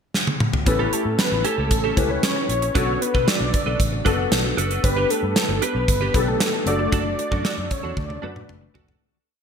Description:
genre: 1980s-style pop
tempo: 115 BPM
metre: 4/4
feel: straight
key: D major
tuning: A4 = 440 Hz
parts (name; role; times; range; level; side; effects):
- gated 80s drum kit; drums; 0.1-9.0 s; hi-hat, kick drum, snare drum, toms; -22 LUFS; equal; gated reverb
- wide unison lead; melody; 0.7-8.8 s; A4 to D5; -25 LUFS; equal; digital delay
- warm grand piano; accompaniment; 0.7-9.0 s; A3 to B4; -27 LUFS; left 4 dB; ensemble chorus
- direct-recorded clean electric guitar; riff; 0.7-9.0 s; C#4 to B4; -29 LUFS; right 6 dB; analog chorus
- vintage muted fingered electric bass; bass; 0.7-8.9 s; F1 to B2; -26 LUFS; equal; none
room: light reverb, studio ambience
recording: bright 1980s-style digital production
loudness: -19 LUFS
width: side -7 dB against mid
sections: 0.0-0.7 pickup bar; 0.7-9.0 verse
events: drum fill 0.1-0.7, 8.0-9.0; fade-out 6.9-9.0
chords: 0.0 N.C.; 0.7 A7; 2.8 Bm7; 4.8 G; 6.7 D/F#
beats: 0.14 | 0.66 1.19 1.71 2.23 | 2.75 3.27 3.79 4.32 | 4.84 5.36 5.88 6.40 | 6.92 7.45 7.97 8.49

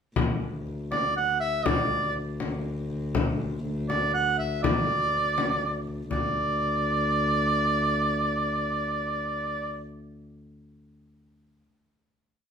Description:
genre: medieval dance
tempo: 121 BPM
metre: 3/4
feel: straight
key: D major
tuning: A4 = 439 Hz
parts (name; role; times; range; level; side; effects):
- warm viola da gamba; drone; 0.2-9.8 s; D2; -31 LUFS; left 1 dB; none
- frame drum; percussion; 0.2-6.3 s; none; -29 LUFS; left 4 dB; none
- clear shawm; melody; 0.9-9.8 s; D5 to F#5; -26 LUFS; right 2 dB; none
room: wet large studio reverb, RT60 0.9 s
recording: band playing live in one room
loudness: -24 LUFS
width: side -7 dB against mid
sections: 0.2-6.1 A section; 6.1-9.1 final note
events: none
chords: none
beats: | 0.17 0.67 1.16 | 1.66 2.15 2.65 | 3.14 3.64 4.13 | 4.63 5.12 5.62 | 6.11 6.60 7.10 | 7.59 8.08 8.57

